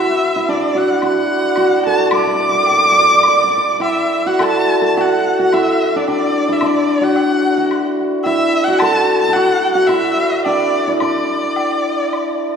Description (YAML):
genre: chinese traditional, Chinese chamber ensemble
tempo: 109 BPM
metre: 4/4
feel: rubato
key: D gong mode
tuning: A4 = 442 Hz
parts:
  - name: clear erhu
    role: melody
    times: 0.0-12.6 s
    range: D5 to D6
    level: -16 LUFS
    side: equal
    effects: none
  - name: hammered dulcimer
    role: second line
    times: 0.0-12.6 s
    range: D4 to D5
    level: -15 LUFS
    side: right 1 dB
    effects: none
  - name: woodblock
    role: percussion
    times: 1.0-12.3 s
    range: none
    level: -26 LUFS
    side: left 3 dB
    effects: none
room: wet concert hall reverb, RT60 2.1 s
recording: heard from further back in the room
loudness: -13 LUFS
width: side -7 dB against mid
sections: 0.0-4.4 A section; 4.4-12.6 B section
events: none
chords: none